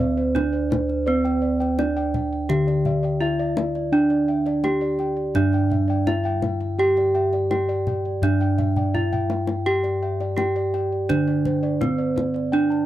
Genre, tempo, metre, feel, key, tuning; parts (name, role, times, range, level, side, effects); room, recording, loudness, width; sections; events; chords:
Javanese gamelan; 84 BPM; 4/4; straight; A4 = 440 Hz
gamelan-type bronze metallophone; melody; 0.0-12.9 s; C4-40c to G4-20c; -22 LUFS; right 3 dB
gamelan-type bossed gongs; arpeggios; 0.0-12.9 s; C5-40c to A5+20c; -31 LUFS; left 4 dB
gamelan-type bronze metallophone; arpeggios; 0.0-12.9 s; C5-40c to G5-20c; -32 LUFS; right 4 dB
gamelan-type bossed gongs; bass; 0.0-12.9 s; D2 to C5-40c; -24 LUFS; left 2 dB
kendang; percussion; 0.0-12.8 s; -29 LUFS; left 3 dB
little or no reverb; dry, close 1970s-style studio recording; -20 LUFS; side -13 dB against mid
0.0-12.9 A section
drum fill 8.8-9.7